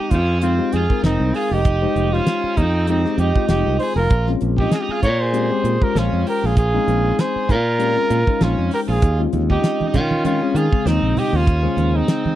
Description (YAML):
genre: electric jazz fusion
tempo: 98 BPM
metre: 4/4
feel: swing 55% on 16ths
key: unclear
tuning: A4 = 439 Hz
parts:
  - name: mellow trumpet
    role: melody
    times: 0.0-12.4 s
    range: Eb4 to Db5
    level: -22 LUFS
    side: right 1 dB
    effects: slapback echo
  - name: overdriven electric guitar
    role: second line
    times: 0.0-12.4 s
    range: C4 to Bb4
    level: -26 LUFS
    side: right 5 dB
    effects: none
  - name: bright tine electric piano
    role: accompaniment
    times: 0.0-12.4 s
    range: Db3 to G5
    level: -24 LUFS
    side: left 9 dB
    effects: lush chorus
  - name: modern bright fingered electric bass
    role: bass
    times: 0.1-12.3 s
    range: F1 to Eb3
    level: -19 LUFS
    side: right 1 dB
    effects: none
  - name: damped 70s drum kit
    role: drums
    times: 0.1-12.2 s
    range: hi-hat, kick drum, snare drum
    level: -18 LUFS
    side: equal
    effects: none
  - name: congas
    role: percussion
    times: 9.3-12.4 s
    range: none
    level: -25 LUFS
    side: right 5 dB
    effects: none
room: small room ambience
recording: dry, close 1970s-style studio recording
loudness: -16 LUFS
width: side -13 dB against mid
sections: 0.0-12.4 A section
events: none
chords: 0.0 Fm9; 4.1 Bbm9; 9.0 Eb13sus4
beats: 0.42 1.04 | 1.65 2.27 2.88 3.50 | 4.11 4.73 5.34 5.95 | 6.57 7.18 7.79 8.41 | 9.02 9.63 10.24 10.86 | 11.47 12.08